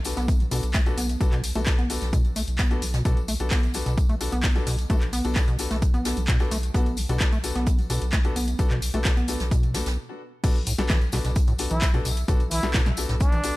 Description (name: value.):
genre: acid house.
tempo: 130 BPM.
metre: 4/4.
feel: straight.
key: B minor.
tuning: A4 = 440 Hz.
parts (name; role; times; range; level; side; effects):
round analog bass; bass; 0.0-13.5 s; B1; -29 LUFS; equal; sidechain pumping.
tambourine; percussion; 0.0-13.5 s; none; -38 LUFS; left 5 dB; none.
clear grand piano; stabs; 0.1-13.5 s; B3 to A4; -33 LUFS; left 4 dB; digital delay.
jazz brush drum kit; drums; 0.1-13.6 s; hi-hat, snare drum; -39 LUFS; right 3 dB; none.
punchy analog drum machine; drums; 0.1-13.5 s; crash cymbal, handclaps, hi-hat, snare drum; -31 LUFS; equal; none.
acid bass, square; riff; 0.2-13.4 s; A2 to B3; -30 LUFS; equal; digital delay.
electronic kick drum; drums; 0.3-13.3 s; none; -23 LUFS; equal; none.
trumpet with plunger mute; melody; 11.7-13.6 s; D4 to E4; -30 LUFS; equal; digital delay.
room: studio reverb.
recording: none.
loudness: -21 LUFS.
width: side -19 dB against mid.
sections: 0.0-10.4 A section; 10.4-13.6 B section.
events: filter sweep on acid bass 0.0-10.4; stop 10.0-10.4; drop 10.4-13.6.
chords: 0.0 Bm7.